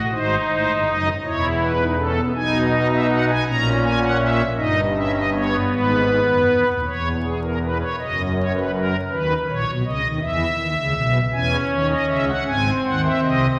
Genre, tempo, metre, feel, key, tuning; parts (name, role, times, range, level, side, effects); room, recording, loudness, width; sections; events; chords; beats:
classical, baroque-style 3-part fugue for pipe organ; 54 BPM (dotted quarters); 6/8; straight; C# minor; A4 = 440 Hz
pipe organ, strings celeste; solo; 0.1-13.5 s; D#1 to A#5; -20 LUFS; equal
wet concert hall reverb, RT60 1.7 s; vinyl crackle; -20 LUFS; mono
0.0-6.9 A section; 6.9-13.6 B section
0.1 G#7; 1.2 C#m/E; 2.4 G#m/B; 3.5 A#m7b5; 4.6 D#7/G; 5.7 G#m; 6.9 C#m/E; 8.0 F#; 9.1 B; 10.2 E5; 11.3 C#m; 12.5 G#
| 0.12 1.24 | 2.35 3.46 | 4.58 5.71 | 6.86 7.99 | 9.11 10.22 | 11.33 12.47